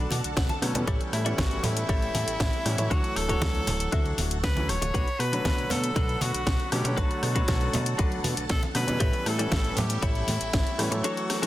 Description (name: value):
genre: nu-disco, nu disco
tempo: 118 BPM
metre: 4/4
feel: straight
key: unclear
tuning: A4 = 440 Hz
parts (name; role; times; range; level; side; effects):
- bright tenor saxophone; melody; 0.0-11.5 s; E4 to C#5; -32 LUFS; left 1 dB; tape echo
- dark baby grand piano; accompaniment; 0.0-11.5 s; D3 to C#5; -33 LUFS; equal; sidechain pumping
- string machine, full ensemble; sustained chords; 0.0-11.5 s; A4 to E6; -38 LUFS; equal; phaser, ensemble chorus, sidechain pumping
- direct-recorded clean electric guitar; riff; 0.0-11.5 s; D4 to A5; -35 LUFS; left 3 dB; analog chorus
- fat analog bass; bass; 0.0-11.0 s; D1 to B2; -30 LUFS; equal; tube saturation
- house drum kit; drums; 0.1-11.5 s; hi-hat, rim click, snare drum; -32 LUFS; left 2 dB; none
- congas; percussion; 0.1-10.4 s; none; -34 LUFS; right 1 dB; none
- electronic kick drum; drums; 0.4-10.6 s; none; -27 LUFS; equal; none
room: digital ambience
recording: dense, heavily limited modern master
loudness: -24 LUFS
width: side -15 dB against mid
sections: 0.0-11.5 A section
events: clean electric guitar fill 0.0-0.9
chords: 0.0 Bm7; 0.9 A7; 2.9 Dmaj7; 4.9 Bm7; 9.0 A7